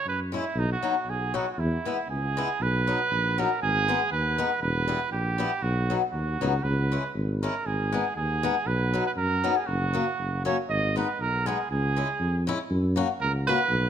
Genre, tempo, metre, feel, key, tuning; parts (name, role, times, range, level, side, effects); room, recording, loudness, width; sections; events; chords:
alpine folk; 119 BPM; 2/4; swing 54% on 8ths; B major; A4 = 438 Hz
clear trumpet; melody; 0.0-13.9 s; D#4 to D#5; -28 LUFS; right 5 dB
mellow tuba; bass; 0.1-13.9 s; E1 to F#2; -28 LUFS; equal
picked swing-style acoustic guitar; accompaniment; 0.3-13.6 s; F#3 to F#4; -30 LUFS; left 6 dB
moderate recital hall reverb, RT60 1.6 s; -24 LUFS; side -9 dB against mid
0.0-2.6 A section; 2.6-13.9 B section
0.0 C#m; 0.6 B; 1.6 E; 2.6 B; 3.6 G#m; 4.6 Em; 5.6 B; 6.6 C#m; 7.7 G#m; 8.7 B; 9.7 F#; 10.7 G#m; 11.7 C#m; 12.7 F#